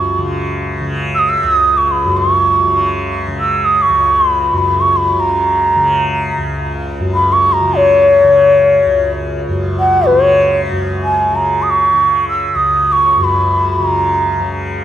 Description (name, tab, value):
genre	indian classical, Hindustani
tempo	free time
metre	none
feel	none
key	C# raga bageshri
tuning	A4 = 444 Hz
part	breathy mellow bansuri	melody	0.0-14.5 s	C#5 to E6	-11 LUFS	equal	tape echo
part	tanpura	drone	0.0-14.8 s	C#2 to C#3	-18 LUFS	equal	none
room	light reverb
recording	close, detailed microphones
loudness	-11 LUFS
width	side -11 dB against mid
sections	0.0-10.7 A section; 10.7-14.8 A section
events	none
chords	none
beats	free time